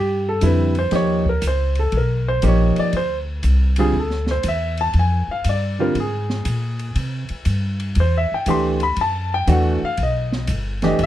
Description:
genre	jazz piano trio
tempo	119 BPM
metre	4/4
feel	swing 67% on 8ths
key	unclear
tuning	A4 = 440 Hz
part	warm concert grand piano	melody	0.0-11.1 s	D3 to C6	-20 LUFS	equal	none
part	upright bass	bass	0.0-11.1 s	E1 to C3	-20 LUFS	equal	none
part	open jazz drum kit	drums	0.4-11.1 s	hi-hat, kick drum, ride cymbal, snare drum	-30 LUFS	equal	none
room	little or no reverb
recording	dark, warm production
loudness	-17 LUFS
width	side -13 dB against mid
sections	0.0-11.1 A section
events	grand piano solo 0.0-11.1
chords	0.0 Am7 (rootless); 0.9 D#9; 2.9 D7sus2; 5.0 Bb7; 7.0 Cadd9; 9.0 E9sus4; 10.0 Baug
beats	0.42 | 0.93 1.43 1.94 2.44 | 2.94 3.44 3.95 4.45 | 4.96 5.46 5.96 6.46 | 6.97 7.47 7.97 8.48 | 8.98 9.49 9.99 10.49 | 11.00

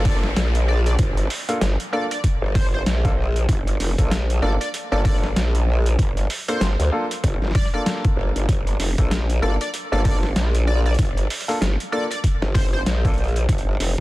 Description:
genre	glitch hop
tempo	96 BPM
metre	4/4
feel	swing 59% on 16ths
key	G minor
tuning	A4 = 441 Hz
part	growl bass	bass	0.0-14.0 s	F1 to D2	-20 LUFS	equal	chorus
part	downlifter	sound effects	0.0-3.5 s	none	-36 LUFS	equal	none
part	sync lead	melody	0.1-12.8 s	C5 to D5	-31 LUFS	equal	analog chorus, dub echo
part	warm grand piano	stabs	0.1-13.1 s	Bb3 to A4	-28 LUFS	equal	vintage 12-bit sampler grit, sidechain pumping, dub echo
part	boom bap sampler-style drum kit	drums	0.1-13.9 s	hi-hat, snare drum	-28 LUFS	equal	overdrive
part	electronic kick drum	drums	0.1-13.6 s	none	-20 LUFS	equal	overdrive
room	little or no reverb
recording	dense, heavily limited modern master, vinyl crackle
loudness	-18 LUFS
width	side -18 dB against mid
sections	0.0-14.0 A section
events	none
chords	0.0 Gm9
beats	0.36 | 0.99 1.61 2.24 2.86 | 3.49 4.11 4.74 5.36 | 5.99 6.61 7.24 7.86 | 8.49 9.11 9.74 10.36 | 10.99 11.61 12.24 12.86 | 13.49

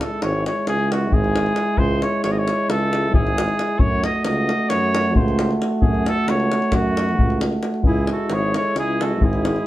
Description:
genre	balkan folk, Balkan brass band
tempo	267 BPM (eighths)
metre	9/8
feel	straight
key	F# dorian sharp4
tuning	A4 = 439 Hz
part	mellow trumpet	melody	0.0-9.7 s	F#4 to D#5	-23 LUFS	equal	plate reverb
part	warm euphonium	accompaniment	0.0-9.7 s	G#3 to A3	-24 LUFS	right 2 dB	none
part	warm trombone	accompaniment	0.0-9.7 s	E4 to F#4	-29 LUFS	left 2 dB	none
part	davul	percussion	0.0-9.6 s	none	-22 LUFS	left 1 dB	none
part	clear tuba	bass	0.2-9.6 s	G#1 to F#2	-24 LUFS	right 1 dB	none
part	clear clarinet	second line	7.9-9.7 s	E4 to A4	-27 LUFS	right 1 dB	none
room	wet studio reverb, RT60 0.7 s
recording	heard from further back in the room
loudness	-17 LUFS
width	side -15 dB against mid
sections	0.0-9.7 A section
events	none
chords	0.0 C#m; 3.8 F#m; 7.8 C#m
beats	0.21 0.43 0.66 0.88 1.10 1.33 1.55 | 1.78 2.00 2.23 2.45 2.67 2.90 3.12 3.35 3.57 | 3.80 4.02 4.25 4.47 4.70 4.92 5.15 5.37 5.60 | 5.82 6.05 6.27 6.50 6.72 6.95 7.17 7.40 7.62 | 7.85 8.07 8.29 8.52 8.74 8.97 9.20 9.42 9.64

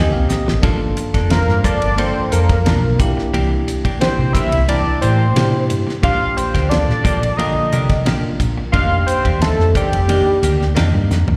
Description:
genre	electric jazz fusion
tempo	89 BPM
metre	4/4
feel	straight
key	unclear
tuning	A4 = 440 Hz
part	bell-like tine electric piano	accompaniment	0.0-11.3 s	D3 to Ab5	-25 LUFS	equal	slapback echo
part	clean electric guitar	stabs	0.0-11.3 s	Eb3 to A4	-27 LUFS	equal	lush chorus, slapback echo, tape echo
part	hollow-body short-scale fingered electric bass	bass	0.0-11.4 s	F1 to C3	-20 LUFS	equal	none
part	damped 70s drum kit	drums	0.3-11.4 s	hi-hat, kick drum, ride cymbal, snare drum, toms	-23 LUFS	equal	none
part	lead with added fifth	melody	1.3-10.7 s	G4 to F5	-22 LUFS	equal	chorus, slapback echo, tape echo
room	light reverb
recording	live gig heard through the venue's PA, recital hall reverb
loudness	-16 LUFS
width	mono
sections	0.0-11.4 A section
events	tine electric piano fill 0.0-0.6; drum fill 0.3-0.6, 11.1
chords	0.0 Abmaj7; 0.6 Gm9; 3.0 C9; 6.0 Ebmaj9/Bb; 8.7 F13sus4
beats	| 0.62 1.30 1.98 2.65 | 3.33 4.00 4.68 5.36 | 6.03 6.71 7.38 8.06 | 8.74 9.41 10.09 10.77

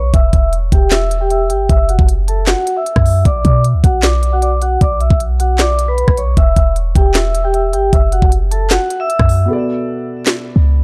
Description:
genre	hip hop, trap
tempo	154 BPM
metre	4/4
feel	half-time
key	B minor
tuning	A4 = 440 Hz
part	vibraphone with hard mallets	melody	0.0-9.5 s	F#4 to E6	-20 LUFS	equal	low-pass filter, digital delay
part	clean 808-style bass	bass	0.0-10.8 s	E1 to B2	-17 LUFS	equal	none
part	trap drum kit	drums	0.1-10.4 s	handclaps, hi-hat, kick drum, rim click, snare drum	-16 LUFS	equal	none
part	dark grand piano	accompaniment	9.5-10.8 s	B2 to D5	-22 LUFS	equal	low-pass filter
room	small room ambience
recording	dark, warm production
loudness	-14 LUFS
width	mono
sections	0.0-10.8 A section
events	filter sweep 0.0-9.5; break 9.5-10.8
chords	0.1 Em; 1.7 F#7(no3); 3.3 Bm; 6.4 Em; 7.9 F#7(no3); 9.5 Bm7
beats	| 0.14 0.53 0.92 1.31 | 1.70 2.08 2.47 2.86 | 3.25 3.64 4.03 4.42 | 4.81 5.20 5.59 5.98 | 6.37 6.76 7.15 7.54 | 7.93 8.32 8.71 9.10 | 9.49 9.88 10.27 10.66

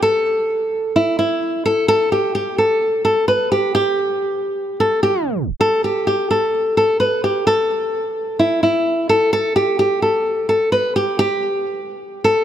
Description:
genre	hip hop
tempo	129 BPM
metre	4/4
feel	half-time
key	unclear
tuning	A4 = 441 Hz
part	nylon-string guitar	solo	0.0-12.4 s	E4 to B4	-16 LUFS	equal	none
room	moderate lush hall reverb, RT60 2.9 s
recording	tape stop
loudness	-16 LUFS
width	side -10 dB against mid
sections	0.0-5.6 A section; 5.6-12.4 B section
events	tape stop 5.1-5.6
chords	none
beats	| 0.03 0.49 0.95 1.42 | 1.89 2.35 2.81 3.28 | 3.75 4.21 4.68 5.14 | 5.61 6.07 6.54 7.00 | 7.47 7.93 8.40 8.86 | 9.33 9.79 10.26 10.72 | 11.19 11.65 12.12

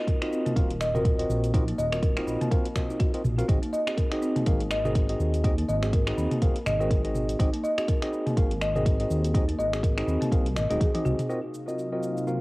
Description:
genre	afro house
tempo	123 BPM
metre	4/4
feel	swing 57% on 16ths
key	unclear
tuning	A4 = 440 Hz
part	tine electric piano	stabs	0.0-12.4 s	C4 to F5	-30 LUFS	equal	sidechain pumping, low-pass filter, cassette tape, tape echo
part	folk marimba with soft mallets	arpeggios	0.1-11.2 s	Bb3 to Eb5	-30 LUFS	equal	sidechain pumping, cassette tape, tape echo
part	afro-pop drum kit	drums	0.1-12.4 s	finger snaps, hi-hat, shaker, toms	-34 LUFS	equal	small room ambience, cassette tape
part	electronic kick drum	drums	0.1-10.9 s	none	-24 LUFS	equal	small room ambience, cassette tape
part	dark detuned saw bass	bass	0.6-11.2 s	Eb1 to Eb2	-28 LUFS	equal	tube saturation, sidechain pumping
part	ethereal airy pad	sustained chords	11.5-12.4 s	C3 to F5	-33 LUFS	left 1 dB	ensemble chorus, built-in reverb, phaser, sidechain pumping, cassette tape
room	little or no reverb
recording	home recording on cassette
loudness	-23 LUFS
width	side -22 dB against mid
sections	0.0-11.3 A section; 11.3-12.4 B section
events	drum fill 10.6-11.3; filter sweep on ambient pad 11.3-12.4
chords	0.0 Ebm69; 3.5 Ab7; 11.3 Ebm69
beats	0.08 0.56 1.05 | 1.54 2.03 2.52 3.00 | 3.49 3.98 4.47 4.96 | 5.44 5.93 6.42 6.91 | 7.39 7.88 8.37 8.86 | 9.35 9.83 10.32 10.81 | 11.30 11.78 12.27

